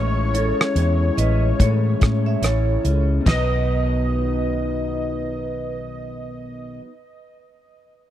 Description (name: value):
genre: indie pop, bedroom pop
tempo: 72 BPM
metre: 4/4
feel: swing 60% on 16ths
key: B major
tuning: A4 = 441 Hz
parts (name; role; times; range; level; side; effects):
- warm analog keys; melody; 0.0-6.8 s; C#5 to D#5; -29 LUFS; left 1 dB; lush chorus, tape echo
- electric guitar through a small old amp; accompaniment; 0.0-6.9 s; A2 to E4; -26 LUFS; left 3 dB; wide subtle chorus, vibrato effect
- vintage muted fingered electric bass; bass; 0.0-6.8 s; A1 to A2; -21 LUFS; equal; none
- vibraphone with hard mallets; second line; 0.3-5.7 s; A4 to E5; -29 LUFS; right 7 dB; lush chorus, tape echo
- damped 70s drum kit; drums; 0.3-3.5 s; crash cymbal, hi-hat, kick drum, rim click, snare drum; -20 LUFS; equal; none
room: small room ambience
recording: dry, close 1970s-style studio recording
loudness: -18 LUFS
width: side -12 dB against mid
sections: 0.0-3.3 A section; 3.3-6.6 B section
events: none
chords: 0.0 Amaj7; 3.3 B